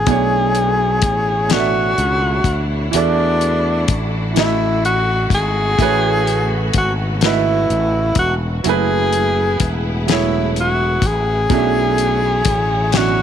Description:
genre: slow six-eight R&B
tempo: 42 BPM (dotted quarters)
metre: 6/8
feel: straight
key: B dorian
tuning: A4 = 440 Hz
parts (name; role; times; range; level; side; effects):
- breathy tenor saxophone; melody; 0.0-13.2 s; D4 to G#4; -18 LUFS; left 1 dB; none
- clear grand piano; accompaniment; 0.0-13.2 s; B2 to E5; -22 LUFS; right 12 dB; none
- sustaining fretless electric bass; bass; 0.0-13.2 s; E1 to E2; -20 LUFS; left 1 dB; none
- clear studio string section; sustained chords; 0.1-13.2 s; A2 to C#5; -28 LUFS; left 2 dB; none
- damped 70s drum kit; drums; 0.1-13.2 s; hi-hat, kick drum, snare drum; -18 LUFS; left 4 dB; none
room: light reverb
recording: 1960s-style stereo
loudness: -14 LUFS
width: side -9 dB against mid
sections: 0.1-13.2 A section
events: none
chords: 0.1 Bm11; 2.9 E9sus4; 5.8 A69; 8.6 F#m11; 11.5 Bm11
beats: | 0.07 1.50 | 2.93 4.36 | 5.79 7.21 | 8.64 10.07 | 11.50 12.93

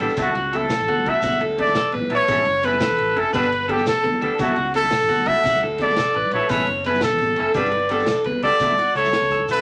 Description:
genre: highlife guitar band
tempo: 114 BPM (dotted quarters)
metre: 12/8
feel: straight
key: D major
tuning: A4 = 439 Hz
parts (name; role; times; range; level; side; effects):
- clean electric guitar; accompaniment; 0.0-9.6 s; F#3 to A4; -30 LUFS; equal; none
- electric guitar at the edge of break-up; arpeggios; 0.0-9.6 s; F#4 to C#5; -27 LUFS; equal; none
- fingered electric bass; bass; 0.0-9.6 s; F#1 to F#2; -36 LUFS; equal; none
- vintage drum kit; drums; 0.0-9.6 s; hi-hat, kick drum, ride cymbal, snare drum; -34 LUFS; equal; none
- shekere; percussion; 0.0-9.6 s; none; -37 LUFS; equal; none
- congas; percussion; 0.1-9.6 s; none; -32 LUFS; equal; none
- clear trumpet; melody; 0.2-9.6 s; F#4 to E5; -22 LUFS; equal; none
room: moderate studio reverb, RT60 0.5 s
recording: vinyl crackle, nothing above 11.0 kHz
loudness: -20 LUFS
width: mono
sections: 0.0-8.6 A section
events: none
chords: 0.2 Dadd9; 2.3 A; 3.3 Gadd9; 4.4 Dadd9; 6.5 A; 7.6 Gadd9; 8.6 Dadd9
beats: | 0.19 0.71 1.24 1.77 | 2.29 2.82 3.35 3.88 | 4.40 4.93 5.46 5.98 | 6.51 7.03 7.56 8.09 | 8.61 9.14

